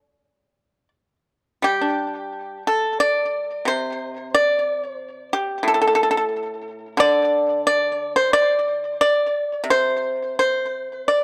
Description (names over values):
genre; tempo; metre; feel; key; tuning
chinese traditional, Chinese solo plucked strings; 90 BPM; 4/4; uneven beats, rubato; unclear; A4 = 439 Hz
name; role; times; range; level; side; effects
pipa; solo; 0.0-11.2 s; A2 to D5; -21 LUFS; equal; tape echo
room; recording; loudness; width
moderate spring reverb, RT60 1.2 s, small room ambience; none; -21 LUFS; mono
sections
0.0-1.6 A section; 1.6-11.2 B section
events
none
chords
none